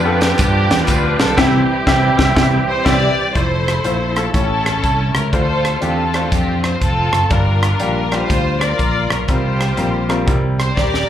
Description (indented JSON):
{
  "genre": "uptempo gospel",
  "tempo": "121 BPM",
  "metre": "4/4",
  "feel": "swing 64% on 8ths",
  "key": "unclear",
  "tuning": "A4 = 440 Hz",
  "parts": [
    { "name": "rich studio string section", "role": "melody", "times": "0.0-11.1 s", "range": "C4 to D5", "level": "-19 LUFS", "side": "left 1 dB", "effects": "slapback echo" },
    { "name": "bright upright piano", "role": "accompaniment", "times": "0.0-11.1 s", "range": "G2 to E5", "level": "-21 LUFS", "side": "left 2 dB", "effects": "slapback echo" },
    { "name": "overdriven tonewheel organ", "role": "sustained chords", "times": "0.0-3.3 s", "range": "E3 to G4", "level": "-21 LUFS", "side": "right 4 dB", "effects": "slow rotary speaker" },
    { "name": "fingered electric bass", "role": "bass", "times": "0.0-11.0 s", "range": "Eb1 to G2", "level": "-19 LUFS", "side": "equal", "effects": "none" },
    { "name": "crisp fusion drum kit", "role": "drums", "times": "0.2-11.1 s", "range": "crash cymbal, hi-hat, kick drum, rim click, snare drum", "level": "-19 LUFS", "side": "equal", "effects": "none" },
    { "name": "tambourine and handclaps", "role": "percussion", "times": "0.2-1.3 s", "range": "none", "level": "-29 LUFS", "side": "right 2 dB", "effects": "slapback echo" }
  ],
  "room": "light reverb",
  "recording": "live gig heard through the venue's PA, club reverb",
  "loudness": "-13 LUFS",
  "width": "side -10 dB against mid",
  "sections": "0.0-3.4 A section; 3.4-11.1 B section",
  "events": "band accent 1.4-3.4; drum fill 10.8-11.1",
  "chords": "0.0 G7; 1.4 C; 3.4 Fmaj7; 4.3 A7; 5.3 Dm7; 7.3 Gm7; 9.3 C7sus4; 10.3 C7",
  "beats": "0.39 0.88 | 1.38 1.87 2.36 2.86 | 3.35 3.84 4.34 4.83 | 5.33 5.83 6.32 6.82 | 7.31 7.81 8.30 8.80 | 9.29 9.79 10.28 10.77"
}